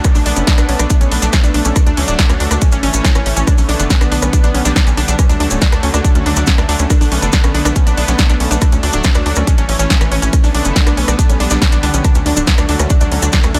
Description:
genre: uplifting trance.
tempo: 140 BPM.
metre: 4/4.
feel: straight.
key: D major.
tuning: A4 = 440 Hz.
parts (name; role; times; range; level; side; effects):
lush unison pad; sustained chords; 0.0-13.6 s; D3 to D4; -23 LUFS; equal; chorus, sidechain pumping.
unison pluck; arpeggios; 0.0-13.6 s; C#4 to D4; -22 LUFS; equal; sidechain pumping, digital delay.
electronic kick drum; drums; 0.0-13.4 s; none; -14 LUFS; equal; none.
punchy analog drum machine; drums; 0.0-13.6 s; hi-hat, rim click, snare drum; -22 LUFS; equal; none.
maracas; percussion; 0.0-13.5 s; none; -26 LUFS; equal; none.
downlifter; sound effects; 0.0-1.8 s; none; barely audible; none; none.
tight sequencer bass; bass; 0.2-13.6 s; D1 to D2; -19 LUFS; equal; sidechain pumping.
room: digital ambience.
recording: none.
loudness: -13 LUFS.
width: mono.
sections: 0.0-13.6 A section.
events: none.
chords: 0.0 Bm7; 1.8 D; 2.6 A; 3.5 Bm7; 4.3 G/B; 5.2 D; 6.9 Bm7; 8.6 D; 9.5 A; 10.3 Bm7; 11.2 G/B; 12.0 D.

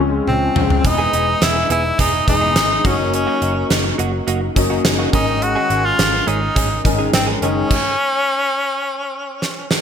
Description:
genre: 1980s-style pop.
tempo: 105 BPM.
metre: 4/4.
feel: straight.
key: unclear.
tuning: A4 = 440 Hz.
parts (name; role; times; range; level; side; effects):
warm concert grand piano; accompaniment; 0.0-7.7 s; Eb3 to D#4; -21 LUFS; left 3 dB; ensemble chorus.
vintage muted picked electric bass; bass; 0.0-7.6 s; E1 to Db2; -23 LUFS; right 1 dB; none.
edgy tenor saxophone; melody; 0.3-9.7 s; C4 to Gb4; -19 LUFS; equal; digital delay.
gated 80s drum kit; drums; 0.3-9.8 s; crash cymbal, hi-hat, kick drum, snare drum, toms; -18 LUFS; right 1 dB; gated reverb.
direct-recorded clean electric guitar; riff; 0.8-7.6 s; E3 to G#4; -26 LUFS; right 5 dB; wide subtle chorus, digital delay.
room: moderate plate reverb, RT60 2.0 s.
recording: bright 1980s-style digital production.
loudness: -15 LUFS.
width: side -8 dB against mid.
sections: 0.0-9.8 A section.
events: drum fill 0.3-0.8, 9.4-9.8; stop 7.7-9.8.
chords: 0.0 Dbmaj7; 0.8 Emaj7; 2.8 Gb6; 5.1 Absus4.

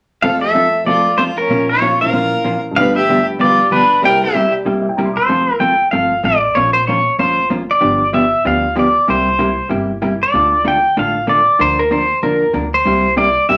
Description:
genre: country, western swing.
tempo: 190 BPM.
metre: 4/4.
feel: swing 61% on 8ths.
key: F major.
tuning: A4 = 440 Hz.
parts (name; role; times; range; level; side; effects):
pedal steel guitar; melody; 0.2-13.6 s; Bb4 to G5; -16 LUFS; equal; none.
clear fiddle; second line; 0.2-4.5 s; Db4 to B4; -24 LUFS; equal; none.
vintage hollow-body jazz guitar; accompaniment; 0.2-13.6 s; G2 to C5; -21 LUFS; equal; none.
warm upright piano; accompaniment; 0.2-5.3 s; C2 to E6; -26 LUFS; equal; none.
upright bass; bass; 5.3-13.6 s; F1 to E2; -30 LUFS; equal; none.
room: wet small room reverb, RT60 0.5 s.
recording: none.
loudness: -15 LUFS.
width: mono.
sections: 0.2-5.3 A section; 5.3-13.6 B section.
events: none.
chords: 0.2 F; 1.5 Bbmadd9; 2.8 G7; 4.0 C7; 5.3 F; 6.6 Bbmadd9; 7.8 G7; 9.1 C7; 10.3 Dm; 11.6 Bb/D; 12.9 C7.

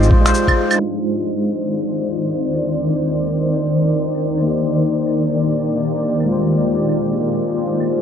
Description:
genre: future garage.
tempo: 131 BPM.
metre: 4/4.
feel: swing 61% on 16ths.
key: C minor.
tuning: A4 = 440 Hz.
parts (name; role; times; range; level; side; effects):
tine electric piano; accompaniment; 0.0-8.0 s; Ab3 to Eb5; -21 LUFS; left 2 dB; wide subtle chorus, sidechain pumping, tape echo.
granular cloud pad; sustained chords; 0.0-8.0 s; Eb3 to D5; -18 LUFS; equal; built-in reverb, sidechain pumping.
electronic shaker, finger snaps and claves; drums; 0.0-7.9 s; none; -22 LUFS; right 2 dB; overdrive, low-pass filter on perc, low-pass filter on snare, low-pass filter on room.
electronic kick drum; drums; 0.1-0.5 s; none; -14 LUFS; equal; overdrive.
room: wet huge ambient reverb, RT60 8.7 s.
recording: dreamy mix soaked in reverb, low-pass filter.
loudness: -16 LUFS.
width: side -8 dB against mid.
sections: 0.8-8.0 A section.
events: filter sweep 0.8-8.0.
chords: 0.0 Ab6; 0.8 Cmadd9; 4.5 Ebmaj7; 6.3 Ab6.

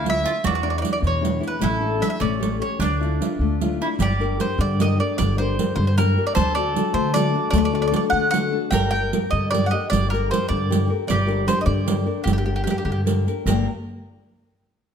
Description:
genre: italian folk, Italian serenade.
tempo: 102 BPM (dotted quarters).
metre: 6/8.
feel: rubato.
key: G harmonic minor from 4.0 s.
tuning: A4 = 437 Hz.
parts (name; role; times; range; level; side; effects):
mandolin; melody; 0.0-13.0 s; G4 to G5; -25 LUFS; right 2 dB; none.
bowl-back mandolin; second line; 0.0-13.7 s; C#4 to Bb4; -29 LUFS; right 1 dB; none.
nylon-string guitar; accompaniment; 0.0-13.7 s; G2 to G5; -26 LUFS; left 7 dB; none.
upright bass; bass; 0.0-13.7 s; G1 to D3; -23 LUFS; equal; none.
riq; percussion; 0.1-13.7 s; none; -27 LUFS; right 6 dB; none.
room: moderate recital hall reverb, RT60 1.3 s.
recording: close, detailed microphones.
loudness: -19 LUFS.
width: side -7 dB against mid.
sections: 0.0-4.0 A section; 4.0-13.5 B section; 13.5-14.7 C section.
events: none.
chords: 0.4 E7; 1.6 A7sus4; 2.2 A7; 2.8 Dmadd9; 4.0 Gm; 6.4 D; 8.7 Gm.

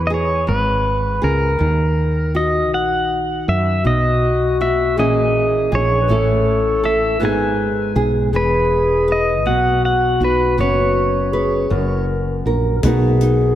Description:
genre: acoustic folk-pop ballad.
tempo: 54 BPM (dotted quarters).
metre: 6/8.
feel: straight.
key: B major.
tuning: A4 = 440 Hz.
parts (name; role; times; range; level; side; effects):
nylon-string guitar; accompaniment; 0.0-13.6 s; F#2 to B4; -21 LUFS; right 1 dB; none.
woody fretless electric bass; bass; 0.0-13.6 s; E1 to F#2; -20 LUFS; equal; none.
pedal steel guitar; melody; 0.1-12.1 s; A#4 to G#5; -20 LUFS; equal; none.
dark clarinet; second line; 3.8-13.6 s; F#4 to B4; -20 LUFS; left 3 dB; none.
natural country drum kit; drums; 12.8-13.4 s; hi-hat, kick drum; -23 LUFS; equal; none.
room: moderate concert hall reverb, RT60 2.5 s.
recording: none.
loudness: -15 LUFS.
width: side -12 dB against mid.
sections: 0.0-12.8 A section.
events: none.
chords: 0.5 C#5/G#; 1.6 D#m; 3.8 B; 5.0 A#m7b5; 6.1 A; 7.2 G#m; 8.3 E; 9.5 B5; 10.6 F#sus4; 11.7 F#; 12.8 Bmaj7.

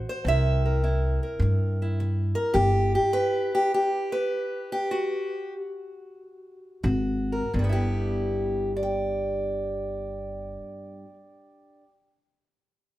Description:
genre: acoustic country blues, solo or duo.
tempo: 83-105 BPM.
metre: 4/4.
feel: swing 68% on 8ths.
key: G major.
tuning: A4 = 440 Hz.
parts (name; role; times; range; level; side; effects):
fingerpicked steel-string acoustic guitar; melody; 0.0-11.9 s; G2 to G5; -27 LUFS; equal; none.
upright bass; bass; 0.0-2.9, 6.8-10.6 s; G1 to G2; -26 LUFS; equal; none.
room: moderate large studio reverb, RT60 1.1 s.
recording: band playing live in one room.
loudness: -24 LUFS.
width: side -15 dB against mid.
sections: 0.0-7.5 A section; 7.5-10.4 B section.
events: slowing down 2.5-7.5.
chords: 0.3 C7; 2.5 G; 6.8 Absus2; 7.5 G6.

